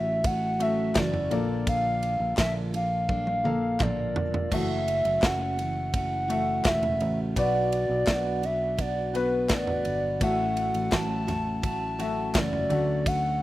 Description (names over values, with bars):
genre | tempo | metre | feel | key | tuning
piano-driven pop | 84 BPM | 4/4 | straight | unclear | A4 = 440 Hz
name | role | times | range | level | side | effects
hollow clarinet-like synth lead | melody | 0.0-13.4 s | B4 to A5 | -28 LUFS | equal | chorus, slapback echo
felt-muted upright piano | accompaniment | 0.0-13.4 s | A2 to F#5 | -32 LUFS | left 5 dB | slapback echo
picked steel-string acoustic guitar | riff | 0.0-13.4 s | F#2 to A4 | -33 LUFS | right 4 dB | none
fingered electric bass | bass | 0.0-13.4 s | E1 to D2 | -32 LUFS | equal | none
modern studio drum kit | drums | 0.2-13.2 s | crash cymbal, kick drum, ride cymbal, snare drum, toms | -28 LUFS | equal | none
group handclap | percussion | 1.0-12.5 s | none | -40 LUFS | left 3 dB | none
room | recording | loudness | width
little or no reverb | recorded outdoors, with no room sound | -24 LUFS | side -16 dB against mid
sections
0.0-13.4 A section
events
drum fill 3.1-4.5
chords
0.0 F#m7/A; 1.3 Bbmaj7; 4.5 F#m7; 7.4 Bm; 10.2 F#m7/A; 12.7 Dmaj7